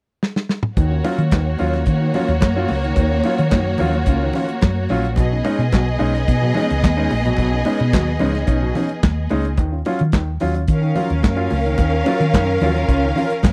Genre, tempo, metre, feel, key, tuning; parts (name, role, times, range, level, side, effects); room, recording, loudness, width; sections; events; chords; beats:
disco; 109 BPM; 4/4; straight; Eb minor; A4 = 440 Hz
warm soul drum kit; drums; 0.2-13.5 s; handclaps, hi-hat, kick drum, snare drum, toms; -20 LUFS; equal
clear symphonic string section; second line; 0.8-13.5 s; Bb3 to F5; -24 LUFS; equal
warm baby grand piano; accompaniment; 0.8-13.3 s; B2 to F4; -25 LUFS; equal
hollow-body short-scale fingered electric bass; bass; 0.8-13.5 s; Bb1 to Eb3; -22 LUFS; equal
congas; percussion; 0.8-13.5 s; -29 LUFS; equal
small room ambience; dry, close 1970s-style studio recording; -18 LUFS; mono
0.8-13.5 A section
drum fill 0.2-0.8
0.0 N.C.; 0.8 Ebm7; 5.2 B6; 9.6 Ebm7
0.23 | 0.78 1.33 1.88 2.43 | 2.98 3.53 4.08 4.63 | 5.18 5.73 6.28 6.83 | 7.38 7.93 8.48 9.04 | 9.59 10.14 10.69 11.24 | 11.79 12.33 12.88 13.43